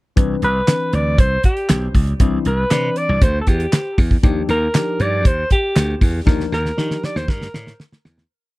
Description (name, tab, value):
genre	early-eighties boogie funk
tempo	118 BPM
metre	4/4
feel	straight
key	unclear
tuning	A4 = 440 Hz
part	tine electric piano	accompaniment	0.2-7.3 s	E3 to D5	-24 LUFS	moving between left 9 dB and right 2 dB	auto-pan
part	slap bass	bass	0.2-8.2 s	B1 to Eb3	-20 LUFS	equal	none
part	damped 70s drum kit	drums	0.2-8.3 s	handclaps, hi-hat, kick drum, snare drum	-15 LUFS	equal	none
part	breathy alto saxophone	melody	0.4-7.8 s	G4 to D5	-21 LUFS	equal	none
room	little or no reverb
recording	dry, close 1970s-style studio recording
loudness	-15 LUFS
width	side -20 dB against mid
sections	0.2-8.3 verse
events	fade-out 6.3-8.3; drum fill 6.3-8.3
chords	0.2 Cmaj9; 4.2 Ebmaj9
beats	| 0.17 0.68 1.19 1.69 | 2.20 2.71 3.22 3.73 | 4.24 4.74 5.25 5.76 | 6.27 6.78 7.29 7.79